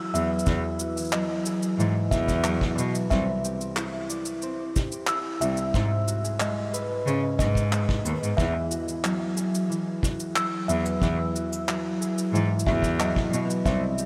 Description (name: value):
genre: folktronica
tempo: 91 BPM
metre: 4/4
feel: straight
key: unclear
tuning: A4 = 440 Hz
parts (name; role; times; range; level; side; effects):
- music box; second line; 0.0-13.8 s; D#5 to E6; -34 LUFS; equal; analog delay
- concert harp; arpeggios; 0.0-14.1 s; G#2 to D5; -31 LUFS; equal; delay
- bright cello; bass; 0.1-13.8 s; C2 to C#3; -30 LUFS; equal; none
- cabasa and handclaps; drums; 0.2-14.1 s; none; -36 LUFS; equal; none
- kick drum; drums; 0.5-13.8 s; none; -29 LUFS; equal; none
room: moderate huge ambient reverb, RT60 5.2 s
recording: dreamy mix soaked in reverb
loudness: -26 LUFS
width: mono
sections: 0.0-14.1 A section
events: none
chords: 0.0 Eadd9; 3.1 Cadd9; 5.7 G#m; 8.4 Eadd9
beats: | 0.47 1.13 1.79 2.45 | 3.11 3.77 4.43 5.09 | 5.75 6.41 7.06 7.72 | 8.38 9.04 9.70 10.36 | 11.02 11.68 12.34 13.00 | 13.66